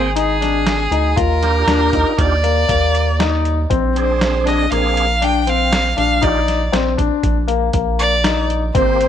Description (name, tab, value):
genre	progressive instrumental, band music in an uneven meter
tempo	119 BPM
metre	5/4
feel	straight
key	unclear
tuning	A4 = 439 Hz
part	rich violin	melody	0.0-9.1 s	Ab4 to G5	-18 LUFS	right 1 dB	none
part	overdriven tonewheel organ	accompaniment	0.0-9.1 s	Bb3 to G5	-24 LUFS	right 12 dB	chorus vibrato, fast rotary speaker
part	warm grand piano	arpeggios	0.0-9.1 s	Bb3 to F4	-20 LUFS	left 9 dB	none
part	rubbery square bass	bass	0.0-9.1 s	Ab1 to Eb2	-19 LUFS	right 1 dB	none
part	lo-fi sampler-style drum kit	drums	0.2-9.1 s	hi-hat, kick drum, snare drum	-22 LUFS	right 1 dB	overdrive
room	moderate plate reverb, RT60 1.7 s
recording	1960s-style stereo with parts hard left and right, faint mains hum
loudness	-14 LUFS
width	side -9 dB against mid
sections	0.0-9.1 A section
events	none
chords	0.0 Abmaj7; 1.2 Ebmaj9; 3.7 Bb9; 6.2 Ebmaj9/Bb